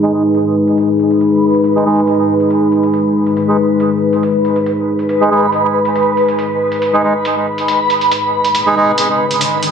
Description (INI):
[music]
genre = deep dubstep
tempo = 139 BPM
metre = 4/4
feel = half-time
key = G# minor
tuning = A4 = 440 Hz
[part]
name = dark analog pad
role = sustained chords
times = 0.0-9.7 s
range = G#3 to G#4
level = -14 LUFS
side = left 2 dB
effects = wide subtle chorus
[part]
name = melodica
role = stabs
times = 0.0-8.9 s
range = G#3 to G#4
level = -17 LUFS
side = right 2 dB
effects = low-pass filter, dub echo
[part]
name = backwards swelling texture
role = texture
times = 0.1-9.7 s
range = B4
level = -16 LUFS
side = equal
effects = built-in reverb
[part]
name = electronic hi-hat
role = drums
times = 0.3-9.7 s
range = none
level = -24 LUFS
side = right 2 dB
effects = none
[part]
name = riser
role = sound effects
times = 8.6-9.7 s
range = none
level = -26 LUFS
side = left 2 dB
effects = none
[sound]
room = moderate spring reverb, RT60 1.4 s, digital ambience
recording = echo-heavy mix, low-pass filter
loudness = -11 LUFS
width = side -7 dB against mid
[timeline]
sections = 0.0-9.7 A section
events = filter sweep on melodica 0.0-9.7; filter sweep 0.0-9.7; riser 8.6-9.7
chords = 0.0 G#5